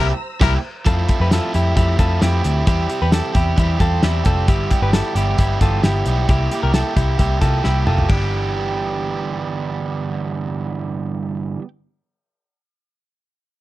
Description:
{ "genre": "jangly indie pop", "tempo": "133 BPM", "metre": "4/4", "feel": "straight", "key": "G mixolydian", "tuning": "A4 = 440 Hz", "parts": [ { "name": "clear trumpet", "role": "second line", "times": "0.0-0.5 s", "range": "Bb4", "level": "-23 LUFS", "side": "left 13 dB", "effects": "none" }, { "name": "overdriven electric guitar", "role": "accompaniment", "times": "0.0-11.7 s", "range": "G2 to G4", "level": "-23 LUFS", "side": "right 6 dB", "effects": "none" }, { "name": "dark studio string section", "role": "sustained chords", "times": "0.0-0.8 s", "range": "C5 to E6", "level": "-33 LUFS", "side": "right 2 dB", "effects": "none" }, { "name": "direct-recorded clean electric guitar", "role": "arpeggios", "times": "0.0-9.4 s", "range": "E4 to B4", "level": "-24 LUFS", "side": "left 4 dB", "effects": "slapback echo" }, { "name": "vintage muted picked electric bass", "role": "bass", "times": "0.0-11.3 s", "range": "F1 to F2", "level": "-19 LUFS", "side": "equal", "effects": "none" }, { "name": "cloth-damped thuddy drum kit", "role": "drums", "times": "0.4-8.2 s", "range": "crash cymbal, hi-hat, kick drum, snare drum, toms", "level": "-18 LUFS", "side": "equal", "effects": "none" } ], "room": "little or no reverb", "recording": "dry, close 1970s-style studio recording", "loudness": "-16 LUFS", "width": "side -16 dB against mid", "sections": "0.9-8.1 A section; 8.1-11.7 B section", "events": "band accent 0.0-0.9; drum fill 7.6-8.1", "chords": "0.0 C7; 0.9 Fmaj7; 2.7 C/E; 4.5 G6; 6.3 C7; 8.1 G6" }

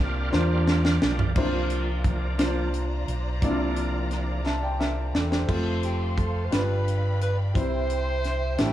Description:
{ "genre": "slow gospel", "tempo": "58 BPM (dotted quarters)", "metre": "6/8", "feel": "straight", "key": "unclear", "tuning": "A4 = 440 Hz", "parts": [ { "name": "clear upright piano", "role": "accompaniment", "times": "0.0-8.7 s", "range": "G2 to A5", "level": "-30 LUFS", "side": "left 1 dB", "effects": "none" }, { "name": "bright tonewheel organ", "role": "sustained chords", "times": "0.0-4.4 s", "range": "F3 to F4", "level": "-32 LUFS", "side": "right 3 dB", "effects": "slow rotary speaker, chorus vibrato" }, { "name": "fingered electric bass", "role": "bass", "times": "0.0-8.7 s", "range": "E1 to E2", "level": "-26 LUFS", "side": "equal", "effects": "none" }, { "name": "tight funk drum kit", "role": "drums", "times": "0.3-8.7 s", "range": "crash cymbal, hi-hat, kick drum, snare drum, toms", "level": "-26 LUFS", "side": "equal", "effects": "none" }, { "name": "warm studio string section", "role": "sustained chords", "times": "1.4-8.7 s", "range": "F4 to C#6", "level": "-37 LUFS", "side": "equal", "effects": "none" }, { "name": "breathy alto saxophone", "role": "melody", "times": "5.8-8.7 s", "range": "G4 to C5", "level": "-31 LUFS", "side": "right 2 dB", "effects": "none" } ], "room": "light reverb", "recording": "small room ambience", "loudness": "-23 LUFS", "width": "side -12 dB against mid", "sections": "0.0-1.4 A section; 1.4-5.5 B section; 5.5-8.7 C section", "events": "tonewheel organ solo 0.0-1.4, 1.4-5.5; drum fill 0.3-1.4, 4.5-5.5", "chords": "0.0 C9sus4; 5.5 F; 6.5 G7; 7.6 C" }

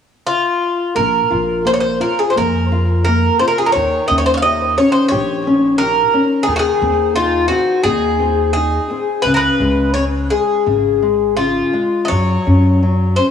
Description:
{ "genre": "fado-style ballad", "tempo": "86 BPM", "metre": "4/4", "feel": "rubato", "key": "Bb minor", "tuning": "A4 = 439 Hz", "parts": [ { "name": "Irish bouzouki", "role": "melody", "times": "0.3-13.3 s", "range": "F4 to F5", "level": "-15 LUFS", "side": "left 1 dB", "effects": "cassette tape, tape echo" }, { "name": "nylon-string guitar", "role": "accompaniment", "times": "1.0-13.3 s", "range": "Db3 to G4", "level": "-19 LUFS", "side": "left 2 dB", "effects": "cassette tape" }, { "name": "upright bass", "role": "bass", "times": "1.0-13.2 s", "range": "Ab1 to Gb2", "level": "-19 LUFS", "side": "equal", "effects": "none" } ], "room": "light reverb, studio ambience", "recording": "home recording on cassette, small room ambience", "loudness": "-13 LUFS", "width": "side -8 dB against mid", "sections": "1.0-13.3 A section", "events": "none", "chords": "0.0 N.C.; 1.0 Bb5; 3.8 Eb7; 6.5 Ab/Eb; 9.3 Db; 12.1 Gb5" }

